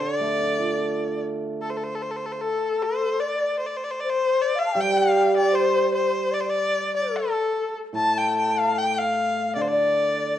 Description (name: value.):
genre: chinese traditional, Chinese chamber ensemble.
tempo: 75 BPM.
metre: 2/4.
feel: rubato.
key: D yu mode.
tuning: A4 = 440 Hz.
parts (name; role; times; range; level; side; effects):
clear erhu; melody; 0.0-10.4 s; A4 to A5; -26 LUFS; left 1 dB; none.
hammered dulcimer; accompaniment; 0.0-10.4 s; A2 to A4; -26 LUFS; right 3 dB; none.
breathy mellow xiao; second line; 2.4-10.4 s; A4 to A5; -24 LUFS; left 4 dB; none.
room: moderate recital hall reverb, RT60 1.4 s.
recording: dark, warm production.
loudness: -21 LUFS.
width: side -11 dB against mid.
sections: 0.0-1.6 A section; 1.6-10.4 B section.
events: none.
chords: none.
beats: 0.80 | 1.61 2.40 | 3.19 3.97 | 4.75 5.53 | 6.32 7.13 | 7.94 8.76 | 9.56 10.34.